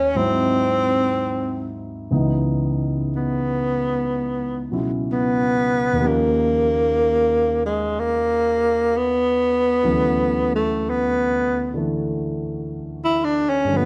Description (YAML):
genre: jazz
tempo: 62 BPM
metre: 4/4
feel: swing 67% on 8ths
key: C# minor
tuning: A4 = 440 Hz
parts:
  - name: warm tenor saxophone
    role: melody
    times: 0.0-13.9 s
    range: G#3 to E4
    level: -21 LUFS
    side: equal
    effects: plate reverb
  - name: dark concert grand piano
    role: accompaniment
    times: 0.0-13.9 s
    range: C#2 to G4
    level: -26 LUFS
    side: equal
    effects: none
room: moderate large studio reverb, RT60 0.9 s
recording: none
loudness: -21 LUFS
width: mono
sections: 0.0-2.1 A section; 2.1-13.9 B section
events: tenor saxophone solo 2.1-13.9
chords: 0.1 G#7b13; 2.1 C#m9; 6.0 D#9; 9.9 Dmaj9